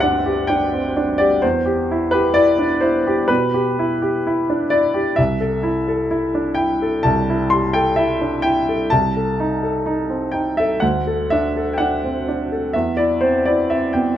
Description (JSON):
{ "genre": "classical, romantic character piece for solo piano", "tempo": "64 BPM", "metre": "4/4", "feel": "rubato", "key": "unclear", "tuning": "A4 = 440 Hz", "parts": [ { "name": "warm grand piano", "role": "solo", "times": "0.0-14.2 s", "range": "C2 to C6", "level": "-16 LUFS", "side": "equal", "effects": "none" } ], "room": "moderate recital hall reverb, RT60 1.5 s", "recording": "close, detailed microphones", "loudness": "-16 LUFS", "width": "side -11 dB against mid", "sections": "0.0-14.2 A section", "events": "none", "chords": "0.0 G; 1.4 Em; 5.2 Am7/C; 8.9 Adim/C; 10.8 D5; 12.7 C/E" }